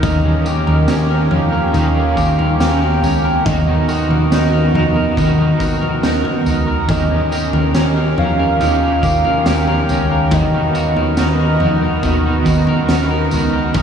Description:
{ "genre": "dream pop", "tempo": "70 BPM", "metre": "4/4", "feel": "straight", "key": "unclear", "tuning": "A4 = 439 Hz", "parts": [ { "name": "soft octave-layered synth lead", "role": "melody", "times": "0.0-13.8 s", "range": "Eb5 to G5", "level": "-21 LUFS", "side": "right 1 dB", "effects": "chorus, phaser, tape echo" }, { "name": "electric guitar at the edge of break-up", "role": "accompaniment", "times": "0.0-13.8 s", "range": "Eb3 to Bb4", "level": "-24 LUFS", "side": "right 4 dB", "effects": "tremolo, analog chorus" }, { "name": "warm analog pad", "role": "sustained chords", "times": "0.0-13.8 s", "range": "Eb3 to A#4", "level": "-20 LUFS", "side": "right 2 dB", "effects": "chorus" }, { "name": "electric guitar at the edge of break-up", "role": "arpeggios", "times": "0.0-13.8 s", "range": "Eb3 to A#4", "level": "-21 LUFS", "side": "left 3 dB", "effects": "wide subtle chorus, tape echo" }, { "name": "vintage muted picked electric bass", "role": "bass", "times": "0.0-13.8 s", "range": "Db2 to F2", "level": "-18 LUFS", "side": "equal", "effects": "none" }, { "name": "raw garage drum kit", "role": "drums", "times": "0.0-13.8 s", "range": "kick drum, snare drum, tambourine, toms", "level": "-19 LUFS", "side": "equal", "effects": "none" } ], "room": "wet huge ambient reverb, RT60 7.8 s", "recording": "dreamy mix soaked in reverb, studio ambience", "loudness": "-13 LUFS", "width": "side -7 dB against mid", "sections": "0.0-13.8 A section", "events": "none", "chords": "0.0 Eb7; 3.5 Bmaj7/D#; 6.9 Eb7; 10.3 Bmaj7/D#", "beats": "| 0.04 0.89 1.75 2.61 | 3.46 4.32 5.18 6.04 | 6.89 7.75 8.61 9.46 | 10.32 11.18 12.04 12.89 | 13.75" }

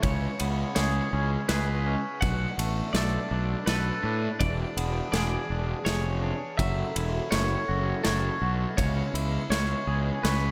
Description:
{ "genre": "post-rock", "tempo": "82 BPM", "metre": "3/4", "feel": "straight", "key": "unclear", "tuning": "A4 = 441 Hz", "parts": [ { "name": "dark symphonic string section", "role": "sustained chords", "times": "0.0-10.5 s", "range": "C#3 to A4", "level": "-41 LUFS", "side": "equal", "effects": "none" }, { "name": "twangy electric guitar", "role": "arpeggios", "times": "0.0-10.5 s", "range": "B2 to C#5", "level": "-35 LUFS", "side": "equal", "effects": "tape echo" }, { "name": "twelve-string electric guitar", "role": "arpeggios", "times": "0.0-10.5 s", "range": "A4 to F#5", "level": "-38 LUFS", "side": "equal", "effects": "tape echo" }, { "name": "fuzz fingered electric bass", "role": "bass", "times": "0.0-10.5 s", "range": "E1 to A2", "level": "-30 LUFS", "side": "equal", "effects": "overdrive" }, { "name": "big rock drum kit", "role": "drums", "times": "0.0-10.4 s", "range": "kick drum, ride cymbal, snare drum", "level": "-34 LUFS", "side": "equal", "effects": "none" } ], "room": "light reverb", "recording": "none", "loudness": "-28 LUFS", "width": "mono", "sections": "0.0-10.5 A section", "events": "none", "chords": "0.0 C#m7; 2.2 Bm7; 4.4 E7; 6.6 F#m7; 8.8 C#m7", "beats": "| 0.03 0.76 1.49 | 2.22 2.95 3.67 | 4.40 5.13 5.86 | 6.59 7.32 8.05 | 8.78 9.51 10.24" }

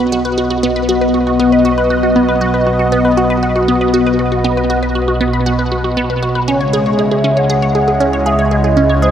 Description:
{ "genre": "ambient, sequencer-driven space music", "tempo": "118 BPM", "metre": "4/4", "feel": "straight", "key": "unclear", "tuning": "A4 = 441 Hz", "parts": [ { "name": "phased analog pad", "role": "sustained chords", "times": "0.0-9.1 s", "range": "B2 to D#5", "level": "-14 LUFS", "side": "left 1 dB", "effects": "phaser, chorus" }, { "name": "resonant blip pluck", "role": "riff", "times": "0.0-9.1 s", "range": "B3 to C#5", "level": "-16 LUFS", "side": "right 1 dB", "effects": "phaser, tape echo" }, { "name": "analog drone", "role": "bass", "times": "0.0-9.1 s", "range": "B1 to C#2", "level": "-21 LUFS", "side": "equal", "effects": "chorus" }, { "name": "expressive portamento lead", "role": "melody", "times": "6.5-9.1 s", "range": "C#5 to F#5", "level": "-16 LUFS", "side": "equal", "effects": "lush chorus, tape echo" } ], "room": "wet cathedral reverb, RT60 6.3 s", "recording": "in a vast, echoing space", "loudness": "-11 LUFS", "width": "side -9 dB against mid", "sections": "0.0-9.1 A section", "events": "fade-in on synth drone 0.0-9.1", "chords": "0.0 B; 6.5 C#m", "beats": "| 0.38 0.89 1.40 1.90 | 2.41 2.92 3.43 3.94 | 4.45 4.95 5.46 5.97 | 6.48 6.99 7.50 8.01 | 8.51 9.02" }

